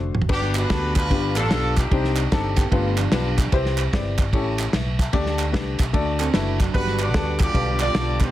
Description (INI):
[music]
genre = uptempo gospel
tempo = 149 BPM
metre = 4/4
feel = swing 64% on 8ths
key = G major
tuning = A4 = 441 Hz
[part]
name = warm concert grand piano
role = accompaniment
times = 0.0-8.2 s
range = G2 to A5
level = -26 LUFS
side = left 4 dB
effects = none
[part]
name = fingered electric bass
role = bass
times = 0.0-8.3 s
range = F1 to D2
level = -25 LUFS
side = equal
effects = none
[part]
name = warm soul drum kit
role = drums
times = 0.1-8.3 s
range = crash cymbal, kick drum, ride cymbal, snare drum, toms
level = -23 LUFS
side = equal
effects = none
[part]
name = clear horn section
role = melody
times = 0.3-2.5, 6.7-8.3 s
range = B3 to D5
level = -25 LUFS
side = right 1 dB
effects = none
[part]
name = group handclap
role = percussion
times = 0.6-8.3 s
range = none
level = -32 LUFS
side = right 4 dB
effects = none
[part]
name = mellow electric guitar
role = second line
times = 2.6-3.5, 6.2-7.0 s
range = F3 to A4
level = -29 LUFS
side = right 7 dB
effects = none
[part]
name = overdriven tonewheel organ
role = sustained chords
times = 6.7-8.3 s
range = D3 to F#4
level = -31 LUFS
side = right 3 dB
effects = slow rotary speaker, chorus vibrato
[sound]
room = light reverb, small room ambience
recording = dense, heavily limited modern master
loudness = -19 LUFS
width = side -14 dB against mid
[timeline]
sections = 0.3-8.3 A section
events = drum fill 0.0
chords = 0.3 Gmaj7; 1.1 G7; 1.9 Cmadd9; 2.7 G7; 3.5 Cmaj7; 4.3 A7; 5.1 Dsus4; 5.9 D; 6.7 Gmaj7; 7.5 G7/B